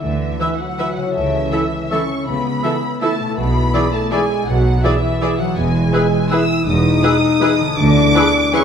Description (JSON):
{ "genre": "classical", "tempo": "162 BPM", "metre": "3/4", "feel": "uneven beats, rubato", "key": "E major from 5.6 s", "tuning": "A4 = 438 Hz", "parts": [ { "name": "rich symphonic violin section", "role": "melody", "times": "0.0-8.6 s", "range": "E5 to E6", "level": "-23 LUFS", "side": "left 1 dB", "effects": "none" }, { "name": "clear French horn section", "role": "sustained chords", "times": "0.0-8.6 s", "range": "E3 to E4", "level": "-20 LUFS", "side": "left 4 dB", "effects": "none" }, { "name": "concert harp", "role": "arpeggios", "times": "0.0-8.6 s", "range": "B2 to B4", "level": "-25 LUFS", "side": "left 5 dB", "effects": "none" }, { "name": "rich symphonic cello section", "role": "bass", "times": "0.0-8.1 s", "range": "E2 to D3", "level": "-22 LUFS", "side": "right 3 dB", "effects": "none" }, { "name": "rich symphonic double bass section", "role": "bass", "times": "0.0-8.1 s", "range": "E1 to D2", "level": "-21 LUFS", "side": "right 3 dB", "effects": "none" }, { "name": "clear oboe", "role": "second line", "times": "0.4-8.6 s", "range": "B4 to E5", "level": "-29 LUFS", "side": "right 2 dB", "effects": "none" }, { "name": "mellow flute section", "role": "second line", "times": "0.4-8.6 s", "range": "E6", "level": "-28 LUFS", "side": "left 2 dB", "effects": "none" }, { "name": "rich symphonic violin section", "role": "second line", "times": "0.4-8.6 s", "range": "G#4 to E5", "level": "-27 LUFS", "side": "left 2 dB", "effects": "none" }, { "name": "warm clarinet", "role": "second line", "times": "0.4-8.6 s", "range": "G#4 to B4", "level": "-26 LUFS", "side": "right 3 dB", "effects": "none" }, { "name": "rich symphonic viola section", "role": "accompaniment", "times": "0.4-8.6 s", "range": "E3 to E4", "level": "-25 LUFS", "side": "right 3 dB", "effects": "none" } ], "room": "wet scoring stage reverb, RT60 1.9 s", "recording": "none", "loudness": "-14 LUFS", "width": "side -7 dB against mid", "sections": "0.0-8.6 A section", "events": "none", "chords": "0.0 E7(no3)/D; 1.2 A/C#; 3.4 E7/B; 5.6 E; 7.8 E7/D", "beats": "| 0.03 0.41 0.79 | 1.16 1.53 1.92 | 2.28 2.64 3.02 | 3.37 3.74 4.12 | 4.48 4.84 5.21 | 5.57 5.93 6.31 | 6.67 7.03 7.42 | 7.78 8.16 8.54" }